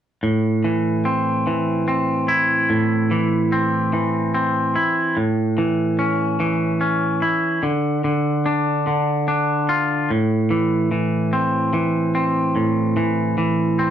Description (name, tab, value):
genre	rock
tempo	49 BPM (dotted quarters)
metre	6/8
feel	straight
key	A minor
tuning	A4 = 442 Hz
part	twangy electric guitar	solo	0.2-13.9 s	A2 to F4	-17 LUFS	equal	none
room	wet small room ambience, RT60 0.5 s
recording	band playing live in one room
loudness	-17 LUFS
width	side -9 dB against mid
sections	0.2-10.1 A section; 10.1-13.9 B section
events	none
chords	0.2 Am; 5.2 A; 7.6 Dm; 10.1 Am